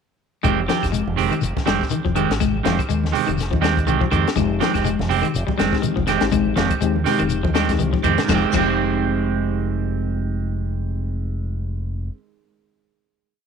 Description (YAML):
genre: afrobeat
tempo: 122 BPM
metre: 4/4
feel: swing 56% on 16ths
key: F minor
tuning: A4 = 440 Hz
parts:
  - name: electric guitar at the edge of break-up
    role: arpeggios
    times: 0.4-8.6 s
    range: Eb3 to Ab3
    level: -25 LUFS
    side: left 11 dB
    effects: none
  - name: clean electric guitar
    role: stabs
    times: 0.4-12.2 s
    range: Eb3 to G4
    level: -22 LUFS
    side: right 13 dB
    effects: none
  - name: fingered electric bass with an envelope filter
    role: bass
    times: 0.4-12.1 s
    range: F1 to F2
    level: -24 LUFS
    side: equal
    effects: none
  - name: compact cocktail drum kit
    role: drums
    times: 0.4-8.7 s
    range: crash cymbal, hi-hat, kick drum, snare drum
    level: -25 LUFS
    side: left 4 dB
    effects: none
  - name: claves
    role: percussion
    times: 0.4-8.7 s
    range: none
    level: -35 LUFS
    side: left 16 dB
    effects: none
  - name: congas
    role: percussion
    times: 0.4-8.7 s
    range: none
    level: -30 LUFS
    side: right 9 dB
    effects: none
  - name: shekere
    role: percussion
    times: 0.4-8.7 s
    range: none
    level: -29 LUFS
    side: left 7 dB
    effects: none
  - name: bright reed electric piano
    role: accompaniment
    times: 4.4-12.1 s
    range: Ab3 to G4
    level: -27 LUFS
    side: left 14 dB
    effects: none
room: light reverb, small room ambience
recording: 1960s-style stereo with parts hard left and right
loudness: -18 LUFS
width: side -6 dB against mid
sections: 0.4-8.3 groove; 8.3-12.2 final chord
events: drum fill 7.8-8.3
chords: 0.4 Fm9